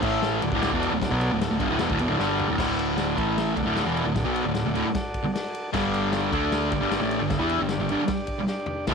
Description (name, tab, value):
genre	garage rock duo or trio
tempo	152 BPM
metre	4/4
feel	straight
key	D major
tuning	A4 = 440 Hz
part	overdriven combo organ	sustained chords	0.0-8.9 s	D4 to E5	-32 LUFS	right 1 dB	none
part	thick fuzz guitar	riff	0.0-8.9 s	D2 to E4	-24 LUFS	equal	distortion
part	growling picked electric bass	bass	0.0-8.9 s	D1 to E2	-33 LUFS	right 1 dB	overdrive
part	vintage drum kit	drums	0.0-8.9 s	crash cymbal, kick drum, ride cymbal, snare drum, toms	-31 LUFS	left 3 dB	none
room	small room ambience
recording	1960s-style stereo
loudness	-22 LUFS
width	side -5 dB against mid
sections	0.0-2.6 A section; 2.6-8.9 B section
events	drum fill 2.2-2.6, 8.5-8.9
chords	0.0 A5; 0.4 D; 3.2 A5; 3.6 D; 5.7 G5; 6.3 D5; 6.7 G5